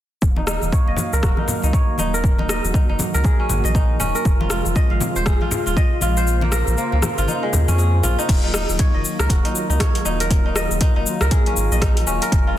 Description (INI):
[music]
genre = afro house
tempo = 119 BPM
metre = 4/4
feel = swing 60% on 16ths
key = Eb dorian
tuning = A4 = 440 Hz
[part]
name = warm analog pad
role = sustained chords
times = 0.2-12.6 s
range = C3 to F5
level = -27 LUFS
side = right 1 dB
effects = chorus, sidechain pumping
[part]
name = round analog bass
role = bass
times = 0.2-12.6 s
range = Eb1 to F2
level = -21 LUFS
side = equal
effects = sidechain pumping
[part]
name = deep house drum kit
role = drums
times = 0.2-12.4 s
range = crash cymbal, hi-hat, rim click, shaker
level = -25 LUFS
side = left 2 dB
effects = overdrive
[part]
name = electronic kick drum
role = drums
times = 0.2-12.4 s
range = none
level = -17 LUFS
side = equal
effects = overdrive
[part]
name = kora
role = arpeggios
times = 0.4-12.6 s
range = Ab3 to F5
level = -24 LUFS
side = equal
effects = sidechain pumping, low-pass filter, dub echo
[part]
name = congas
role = percussion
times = 0.4-8.2 s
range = none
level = -28 LUFS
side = left 2 dB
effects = none
[sound]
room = digital ambience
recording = dense, heavily limited modern master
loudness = -16 LUFS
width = side -12 dB against mid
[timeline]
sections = 0.2-8.3 A section; 8.3-12.6 B section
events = filter sweep on analog synth bass 0.2-8.3; kick drops out 6.3-8.3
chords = 0.2 Ebmadd9; 4.3 Fm; 6.3 Bbmadd9; 8.3 Ebmadd9